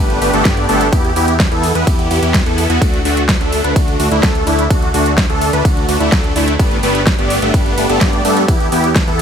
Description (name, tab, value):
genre	EDM, festival progressive house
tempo	127 BPM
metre	4/4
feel	straight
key	D major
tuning	A4 = 436 Hz
part	supersaw chords	riff	0.0-9.2 s	A3 to E5	-15 LUFS	equal	sidechain pumping, tape echo
part	fat analog bass	bass	0.0-9.2 s	G1 to G2	-19 LUFS	equal	sidechain pumping
part	big-room dance drum kit	drums	0.1-9.2 s	hi-hat, ride cymbal, snare drum	-21 LUFS	equal	overdrive
part	electronic kick drum	drums	0.5-9.1 s	none	-15 LUFS	equal	overdrive
room	digital ambience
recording	none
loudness	-11 LUFS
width	side -8 dB against mid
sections	0.0-9.2 A section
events	none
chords	0.0 Gadd9; 0.9 Em; 2.8 D; 6.6 Gadd9; 8.5 Em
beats	0.45 | 0.93 1.40 1.87 2.34 | 2.82 3.29 3.76 4.23 | 4.71 5.18 5.65 6.12 | 6.59 7.07 7.54 8.01 | 8.48 8.96